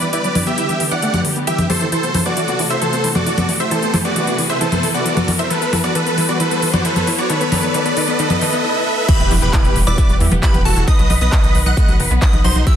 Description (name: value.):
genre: uplifting trance.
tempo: 134 BPM.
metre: 4/4.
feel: straight.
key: E minor.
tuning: A4 = 440 Hz.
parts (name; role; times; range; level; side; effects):
dense compressed supersaw; melody; 0.0-12.8 s; D#4 to F#5; -20 LUFS; right 1 dB; sidechain pumping, ping-pong delay.
dark symphonic string section; sustained chords; 0.0-12.8 s; C3 to F#5; -25 LUFS; right 1 dB; sidechain pumping.
analog pluck; arpeggios; 0.0-12.7 s; D3 to E4; -23 LUFS; left 2 dB; lush chorus, sidechain pumping, ping-pong delay.
big-room dance drum kit; drums; 0.0-12.8 s; congas, crash cymbal, handclaps, hi-hat; -20 LUFS; left 1 dB; overdrive.
riser, swell and impact; sound effects; 0.1-10.9 s; none; -25 LUFS; right 1 dB; none.
plucky unison lead; second line; 9.1-12.8 s; A5 to F#6; -25 LUFS; left 1 dB; sidechain pumping, ping-pong delay.
electronic kick drum; drums; 9.1-12.8 s; none; -15 LUFS; equal; none.
tight sequencer bass; bass; 9.2-12.6 s; E1 to E2; -17 LUFS; equal; sidechain pumping.
room: light reverb, digital ambience.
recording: dense, heavily limited modern master.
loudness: -14 LUFS.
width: side -9 dB against mid.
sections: 0.0-9.1 A section; 9.1-12.8 B section.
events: build-up 0.0-9.1; filter sweep on synth pluck 0.0-9.1; riser 0.1-9.1; swell 8.2-9.1; drop 9.1-12.8; impact 9.1-10.9.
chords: 0.1 G; 1.9 Amadd9; 5.5 Emadd9; 7.3 B; 9.1 Emadd9; 10.9 B.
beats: | 0.13 0.58 1.03 1.47 | 1.92 2.37 2.82 3.27 | 3.71 4.16 4.61 5.06 | 5.50 5.95 6.40 6.85 | 7.29 7.74 8.19 8.64 | 9.09 9.53 9.98 10.43 | 10.88 11.32 11.77 12.22 | 12.67.